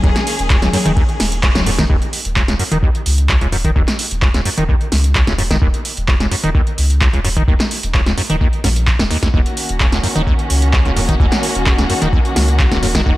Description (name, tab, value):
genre	acid house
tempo	129 BPM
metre	4/4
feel	straight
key	Eb minor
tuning	A4 = 440 Hz
part	warm studio string section	sustained chords	0.0-1.9, 9.3-13.2 s	Eb3 to Ab4	-21 LUFS	left 1 dB	sidechain pumping
part	liquid acid bass	riff	0.0-13.1 s	Db2 to Eb3	-19 LUFS	equal	chorus, overdrive, sidechain pumping, analog delay
part	warm sub bass	bass	0.0-13.2 s	Eb1 to Db2	-18 LUFS	equal	tube saturation, sidechain pumping
part	electro analog drum machine	drums	0.0-13.0 s	congas, handclaps, hi-hat, ride cymbal, snare drum	-19 LUFS	equal	overdrive
part	electronic kick drum	drums	0.0-13.2 s	none	-16 LUFS	equal	overdrive
room	light reverb, digital ambience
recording	dry, gritty hardware recording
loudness	-13 LUFS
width	side -17 dB against mid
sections	0.0-1.9 A section; 1.9-13.2 B section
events	drop 0.0-1.9; band accent 1.4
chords	0.0 Eb7(no3); 1.9 Ebm7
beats	| 0.04 0.50 0.97 1.43 | 1.90 2.36 2.83 3.29 | 3.76 4.22 4.69 5.15 | 5.62 6.08 6.55 7.01 | 7.48 7.94 8.41 8.87 | 9.34 9.80 10.27 10.73 | 11.20 11.66 12.13 12.59 | 13.06